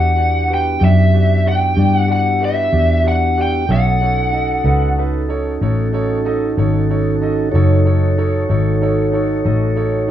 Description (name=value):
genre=blues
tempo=62 BPM (dotted quarters)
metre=12/8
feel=straight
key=B mixolydian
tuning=A4 = 440 Hz
part: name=lead guitar through a small cranked amp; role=melody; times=0.0-5.0 s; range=E5 to G5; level=-17 LUFS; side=left 1 dB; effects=overdrive
part: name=bright concert grand piano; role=accompaniment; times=0.0-10.1 s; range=D#4 to D#5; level=-25 LUFS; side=right 7 dB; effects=none
part: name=mellow tonewheel organ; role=sustained chords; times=0.0-10.1 s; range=B3 to C#5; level=-21 LUFS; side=equal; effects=slow rotary speaker
part: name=vintage muted fingered electric bass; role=bass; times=0.0-10.1 s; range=F#1 to G2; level=-16 LUFS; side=equal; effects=none
room=digital ambience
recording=rough home demo mix, studio reverb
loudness=-13 LUFS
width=side -11 dB against mid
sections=0.0-10.1 A section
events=none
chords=0.0 Em7; 3.7 B9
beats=0.81 1.77 2.73 | 3.69 4.66 5.62 6.58 | 7.53 8.49 9.45